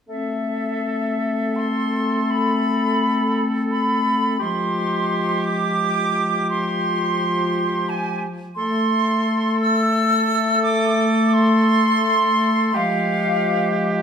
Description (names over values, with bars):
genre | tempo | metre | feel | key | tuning
cinematic, emotional film score for orchestra | 86 BPM | 3/4 | rubato | A minor | A4 = 443 Hz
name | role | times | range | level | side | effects
bright small flute group | second line | 0.1-13.9 s | E5 to E6 | -22 LUFS | equal | none
mellow clarinet | second line | 0.1-14.0 s | Ab3 to C4 | -25 LUFS | left 1 dB | none
warm oboe | second line | 0.1-14.0 s | G4 to A4 | -26 LUFS | right 3 dB | none
mellow French horn section | sustained chords | 0.1-14.0 s | F3 to A3 | -23 LUFS | left 2 dB | none
room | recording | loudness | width
wet recital hall reverb, RT60 1.3 s | none | -18 LUFS | side -7 dB against mid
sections
0.1-14.0 A section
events
none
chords
0.1 Am; 4.4 Fmadd9; 8.6 N.C.; 12.7 Fmadd9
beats
| 0.10 0.82 1.58 | 2.30 3.01 3.71 | 4.41 5.10 5.80 | 6.49 7.18 7.88 | 8.57 9.26 9.94 | 10.64 11.34 12.04 | 12.74 13.45